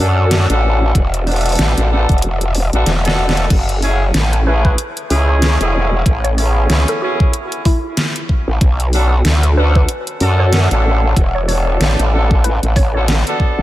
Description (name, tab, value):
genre	glitch hop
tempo	94 BPM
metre	4/4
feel	swing 58% on 16ths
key	unclear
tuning	A4 = 441 Hz
part	dark horn section	stabs	0.0-13.6 s	A3 to A4	-20 LUFS	equal	sidechain pumping, diffuse ambient delay
part	growl bass	bass	0.0-13.6 s	E1 to F#2	-14 LUFS	equal	chorus, tube saturation
part	pop drum kit	drums	0.3-13.4 s	crash cymbal, hi-hat, rim click, snare drum	-21 LUFS	equal	overdrive
part	electronic kick drum	drums	0.9-13.5 s	none	-14 LUFS	equal	overdrive
part	woody wave-folded pluck	melody	4.5-13.0 s	E4 to C#5	-25 LUFS	equal	wide subtle chorus, diffuse ambient delay
room	light reverb, digital ambience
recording	none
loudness	-12 LUFS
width	side -15 dB against mid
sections	0.0-13.6 A section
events	kick drops out 2.2-3.5; drum fill 2.9-3.5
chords	0.0 Bm7 (rootless); 1.0 E7sus4; 3.5 F#m9; 6.1 Amaj9; 8.6 Bm7; 11.2 E7sus4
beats	0.31 | 0.95 1.59 2.23 2.87 | 3.50 4.14 4.78 5.42 | 6.06 6.70 7.33 7.97 | 8.61 9.25 9.89 10.53 | 11.16 11.80 12.44 13.08